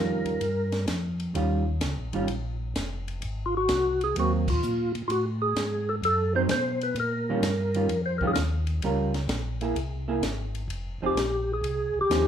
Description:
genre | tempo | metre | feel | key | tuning
soul jazz organ trio | 128 BPM | 4/4 | swing 68% on 8ths | Eb mixolydian | A4 = 440 Hz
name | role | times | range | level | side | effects
percussive tonewheel organ | melody | 0.0-12.3 s | F4 to C5 | -26 LUFS | equal | slow rotary speaker, chorus vibrato
hollow-body jazz guitar | accompaniment | 0.0-12.3 s | Eb3 to Bb4 | -30 LUFS | right 3 dB | none
mellow tonewheel organ | bass | 0.0-12.3 s | F1 to Cb3 | -29 LUFS | equal | slow rotary speaker
compact cocktail drum kit | drums | 0.3-12.3 s | crash cymbal, hi-hat, kick drum, ride cymbal, snare drum | -34 LUFS | equal | none
room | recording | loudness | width
light reverb | minimal, uncompressed stereo recording | -25 LUFS | side -9 dB against mid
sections
0.0-12.3 A section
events
band accent 4.4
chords
0.0 Eb9; 3.2 Ab9; 5.1 Am6; 7.0 Eb9; 8.8 Gm7b5; 9.8 Caug7; 10.7 Fm7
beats
0.41 0.88 | 1.35 1.82 2.29 2.75 | 3.22 3.69 4.16 4.62 | 5.09 5.56 6.03 6.49 | 6.96 7.43 7.89 8.36 | 8.83 9.30 9.76 10.23 | 10.70 11.17 11.63 12.10

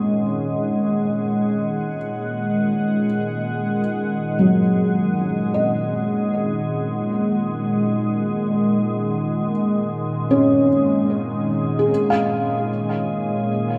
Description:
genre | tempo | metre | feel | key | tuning
ambient | free time | none | none | unclear | A4 = 440 Hz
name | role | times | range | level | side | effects
warm analog pad | sustained chords | 0.0-13.8 s | A#2 to F#5 | -26 LUFS | equal | chorus
felt-muted upright piano | arpeggios | 0.0-13.8 s | F#3 to C#6 | -24 LUFS | equal | tape echo
organ-like drone | drone | 0.0-13.8 s | G#3 | -26 LUFS | equal | ensemble chorus, built-in reverb
room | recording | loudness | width
wet lush hall reverb, RT60 2.6 s | dark, warm production | -21 LUFS | mono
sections
0.0-13.8 A section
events
fade-in on analog synth pad 0.0-13.8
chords
0.0 G#sus2; 11.9 C#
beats
free time

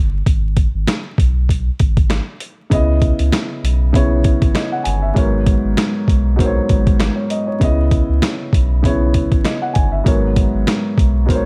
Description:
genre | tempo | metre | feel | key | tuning
hip hop, boom-bap hip-hop | 98 BPM | 4/4 | swing 56% on 16ths | G# minor | A4 = 440 Hz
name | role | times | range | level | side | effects
warm sub bass | bass | 0.0-11.5 s | G1 to C#2 | -20 LUFS | equal | none
boom bap sampler-style drum kit | drums | 0.3-11.5 s | hi-hat, kick drum, snare drum | -18 LUFS | equal | none
dark concert grand piano | accompaniment | 2.7-11.5 s | G#2 to G#5 | -21 LUFS | equal | high-pass filter, low-pass filter
room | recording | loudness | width
little or no reverb | vinyl crackle | -16 LUFS | mono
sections
0.0-11.5 A section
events
break 0.0-2.7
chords
0.3 G#m; 2.7 C#m9; 5.2 G#m11; 7.6 C#m9; 10.1 G#m11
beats
| 0.26 0.88 1.49 2.10 | 2.71 3.32 3.94 4.55 | 5.16 5.77 6.38 7.00 | 7.61 8.22 8.83 9.45 | 10.06 10.67 11.28

